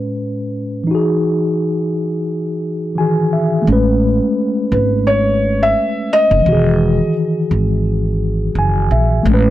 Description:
lo-fi hip hop; 86 BPM; 4/4; swing 57% on 16ths; E major; A4 = 443 Hz
mellow tine electric piano; accompaniment; 0.0-9.5 s; A2 to G#5; -16 LUFS; left 1 dB; medium stereo tremolo, low-pass filter, plate reverb
upright bass; bass; 3.7-9.5 s; E1 to A#1; -16 LUFS; right 1 dB
felt-muted upright piano; melody; 4.7-7.1 s; B4 to E5; -15 LUFS; equal; low-pass filter, plate reverb, tape echo
light reverb; -13 LUFS; side -14 dB against mid
0.0-3.7 A section; 3.7-9.5 B section
filter sweep 0.0-3.7; tine electric piano fill 2.6-3.7
0.0 Amaj9; 0.9 Emaj9; 3.7 Amaj9; 6.5 Emaj9
0.18 | 0.88 1.58 2.27 2.97 | 3.67 4.37 5.06 5.76 | 6.46 7.16 7.86 8.55 | 9.25

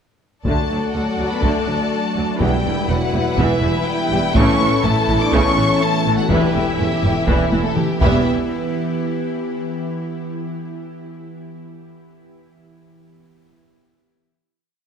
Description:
cinematic, hybrid orchestral and electronic film score; 123 BPM; 4/4; straight; E dorian; A4 = 441 Hz
warm symphonic violin section; melody; 0.4-8.3 s; E5 to D6; -24 LUFS; left 4 dB
warm symphonic violin section; second line; 0.4-8.3 s; E4 to D5; -25 LUFS; left 2 dB
rich symphonic viola section; accompaniment; 0.5-8.3 s; C#3 to F#4; -25 LUFS; right 2 dB
bowed-like drone; sustained chords; 1.7-8.3 s; E3 to D5; -25 LUFS; right 1 dB; built-in reverb
clear trombone section; sustained chords; 0.5-8.2 s; E3 to B3; -29 LUFS; right 5 dB
mellow French horn section; sustained chords; 0.5-8.2 s; E3 to E4; -25 LUFS; left 4 dB
dark studio cello section; bass; 0.5-8.3 s; D2 to A2; -24 LUFS; right 2 dB
rich symphonic double bass section; bass; 0.5-8.3 s; E1 to D2; -24 LUFS; right 2 dB
taiko ensemble; drums; 0.5-8.9 s; -22 LUFS; left 1 dB
wet scoring stage reverb, RT60 1.5 s; -16 LUFS; side -7 dB against mid
0.5-8.3 theme; 8.3-10.2 final hit
drum fill 7.5-8.3
0.5 D; 2.4 Em; 4.4 A; 6.3 Em; 8.3 N.C.
| 0.46 0.94 1.43 1.92 | 2.41 2.89 3.38 3.87 | 4.36 4.84 5.33 5.82 | 6.31 6.80 7.28 7.77 | 8.26 8.75

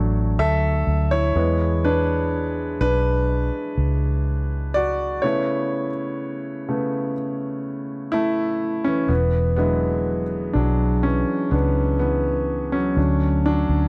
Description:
pop ballad; 62 BPM; 4/4; straight; A4 = 441 Hz
clear grand piano; accompaniment; 0.0-13.9 s; C#3 to E5; -24 LUFS; equal
vintage muted fingered electric bass; bass; 0.0-13.9 s; E1 to E2; -24 LUFS; equal
studio reverb; dark, warm production; -22 LUFS; mono
0.0-9.1 A section; 9.1-13.9 A section
grand piano solo 0.0-9.1, 9.1-13.9; stop 5.2-9.1
0.0 D; 1.4 E; 5.2 Aadd9; 9.1 Eadd9; 13.0 D
0.39 | 1.36 2.33 3.29 4.26 | 5.23 6.20 7.16 8.13 | 9.10 10.07 11.04 12.00 | 12.97

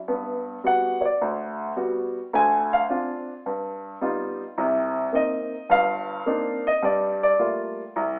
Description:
solo jazz; 106 BPM; 4/4; swing 69% on 8ths, rubato; A4 = 440 Hz
warm baby grand piano; solo; 0.1-8.2 s; G1 to Ab5; -25 LUFS; equal
moderate large studio reverb, RT60 1.3 s; band playing live in one room, telephone sound; -25 LUFS; mono
0.1-8.2 A section
grand piano solo 0.0-8.2
0.1 Gmaj7; 2.3 Dm7b5; 3.5 Gaug7; 4.6 Cm9; 6.8 Gm9
| 0.07 0.64 1.21 1.77 | 2.34 2.91 3.47 4.03 | 4.58 5.14 5.71 6.27 | 6.84 7.40 7.97

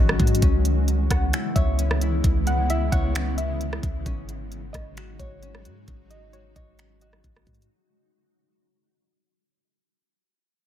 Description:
hip hop, atmospheric cloud-rap; 132 BPM; 4/4; half-time; A4 = 439 Hz
soft round pluck; melody; 0.0-7.7 s; C#5 to F#5; -33 LUFS; left 1 dB; chorus, ping-pong delay
granular cloud pad; sustained chords; 0.0-7.7 s; C#3 to F#4; -30 LUFS; equal; built-in reverb, sidechain pumping
Celtic harp; arpeggios; 0.0-9.7 s; C#4 to C#5; -34 LUFS; left 7 dB; ping-pong delay
clean 808-style bass; bass; 0.0-7.7 s; G#1 to G#2; -24 LUFS; equal
trap drum kit; drums; 0.1-7.7 s; finger snaps, hi-hat, kick drum, rim click; -24 LUFS; equal
digital ambience; -20 LUFS; side -11 dB against mid
0.0-7.7 A section
fade-out 0.0-7.7
0.4 C#m7; 4.1 G#7sus4
| 0.42 0.88 1.33 1.79 | 2.24 2.70 3.15 3.60 | 4.06 4.51 4.97 5.42 | 5.88 6.33 6.79 7.24

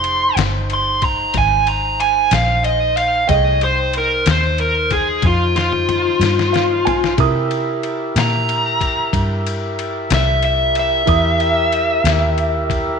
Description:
slow blues; 62 BPM (dotted quarters); 12/8; straight; F minor; A4 = 440 Hz
dark smooth lead guitar; melody; 0.0-12.7 s; F4 to C6; -17 LUFS; equal; overdrive, slapback echo
warm upright piano; accompaniment; 0.0-13.0 s; E4 to D#6; -24 LUFS; right 14 dB
tonewheel organ; sustained chords; 0.0-13.0 s; A3 to E5; -25 LUFS; right 1 dB; slow rotary speaker
vintage muted fingered electric bass; bass; 0.0-13.0 s; F1 to C3; -20 LUFS; equal
trip hop sampler-style drum kit; drums; 0.0-12.8 s; kick drum, ride cymbal, snare drum, toms; -23 LUFS; left 6 dB
light reverb, digital ambience; 1960s-style stereo with parts hard left and right; -14 LUFS; side -6 dB against mid
0.0-13.0 A section
lead electric guitar solo 0.0-13.0; drum fill 5.2-7.2; upright piano fill 6.2-7.2
0.0 Fm9; 7.2 C7#9
0.36 1.34 2.31 | 3.28 4.25 5.23 6.20 | 7.17 8.14 9.12 10.09 | 11.06 12.04

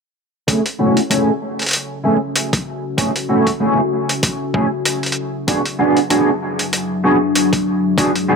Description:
glitch hop; 96 BPM; 4/4; swing 56% on 16ths; F# minor; A4 = 440 Hz
electric guitar at the edge of break-up; stabs; 0.5-8.4 s; A3 to G#4; -17 LUFS; right 1 dB; analog chorus, sidechain pumping, low-pass filter, dub echo
electronic hi-hat; drums; 0.5-8.3 s; -19 LUFS; equal
electronic kick drum; drums; 0.5-8.1 s; -21 LUFS; equal; high-pass filter on kick
deep dark ambient pad; texture; 1.7-8.4 s; F#3 to E5; -21 LUFS; left 3 dB; chorus, built-in reverb, sidechain pumping
moderate echo chamber reverb, RT60 2.1 s; echo-heavy mix; -15 LUFS; side -5 dB against mid
0.5-8.4 A section
filter sweep on clean electric guitar 0.5-8.4
0.5 F#m7; 5.5 E7/F#
| 0.48 1.10 1.73 2.35 | 2.98 3.60 4.23 4.86 | 5.48 6.11 6.73 7.36 | 7.98

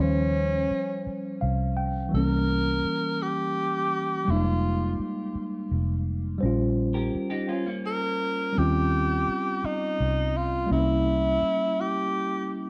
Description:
slow six-eight R&B; 56 BPM (dotted quarters); 6/8; straight; A4 = 435 Hz
breathy tenor saxophone; melody; 0.0-12.6 s; Db4 to Bb4; -30 LUFS; equal
mellow tine electric piano; accompaniment; 0.0-12.7 s; E3 to G5; -30 LUFS; equal
vintage muted fingered electric bass; bass; 0.0-11.5 s; F1 to Eb2; -29 LUFS; equal
semi-hollow electric guitar; second line; 6.9-8.5 s; Bb3 to Bb4; -37 LUFS; equal; lush chorus, tape echo
moderate spring reverb, RT60 1.1 s, digital ambience; worn, warbling old tape, cassette tape, warbly pitch drift; -26 LUFS; mono
0.0-12.7 A section
tine electric piano fill 1.1-2.1
0.0 Eb13; 2.1 C7b9; 4.3 Fm11; 6.4 Bbm69; 8.6 Eb13; 10.7 C7b9
1.05 | 2.12 3.19 | 4.26 5.34 | 6.41 7.48 | 8.55 9.62 | 10.69 11.76

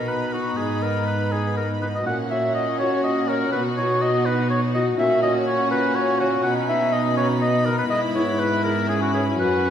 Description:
classical, baroque-style concerto movement with solo episodes; 122 BPM; 3/4; straight; B major; A4 = 439 Hz
clear chamber violin section; melody; 0.0-9.7 s; F#5 to B5; -36 LUFS; left 3 dB
warm oboe; melody; 0.0-9.7 s; F#4 to F#5; -23 LUFS; equal
rich chamber violin section; second line; 0.0-9.7 s; D#4 to F#4; -27 LUFS; left 2 dB
clear chamber viola section; accompaniment; 0.0-9.7 s; B3 to D#4; -28 LUFS; left 2 dB
lute; accompaniment; 0.0-9.7 s; F#2 to F#4; -29 LUFS; equal
rich chamber cello section; bass; 0.0-9.7 s; F#2 to B2; -26 LUFS; right 3 dB
wet recital hall reverb, RT60 1.8 s; heard from further back in the room; -19 LUFS; side -9 dB against mid
0.0-9.7 A section
0.0 B; 0.6 G#m; 2.1 F#/A#; 3.5 B; 5.0 F#/A#; 6.4 B; 7.9 E/G#; 8.9 C#m7/G#
0.09 | 0.58 1.07 1.57 | 2.06 2.55 3.04 | 3.53 4.02 4.50 | 4.99 5.47 5.96 | 6.44 6.93 7.42 | 7.90 8.39 8.89 | 9.39

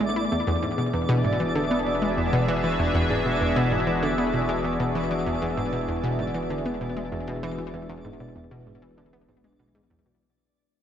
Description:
ambient, sequencer-driven space music; 97 BPM; 4/4; straight; A4 = 440 Hz
sweeping resonant pad; sustained chords; 0.0-10.2 s; A2 to E5; -28 LUFS; left 1 dB; chorus, shimmer reverb
vibraphone with soft mallets; arpeggios; 0.0-10.2 s; G#3 to E5; -31 LUFS; right 1 dB; auto-pan, ping-pong delay
analog pluck; riff; 0.0-10.1 s; E2 to E4; -26 LUFS; equal; chorus, ping-pong delay
warm sub bass; bass; 0.0-10.2 s; E1 to A1; -40 LUFS; equal
twinkling granular texture; texture; 0.0-10.2 s; D5; -33 LUFS; right 1 dB; built-in reverb, shimmer reverb
wet concert hall reverb, RT60 2.3 s; worn, warbling old tape, cassette tape, warbly pitch drift; -22 LUFS; side -9 dB against mid
0.0-10.2 A section
fade-in on vibraphone 0.0-10.2; fade-out 3.6-10.2
0.3 E7
| 0.32 0.93 1.55 2.17 | 2.79 3.41 4.03 4.65 | 5.26 5.88 6.50 7.12 | 7.74 8.36 8.98 9.59

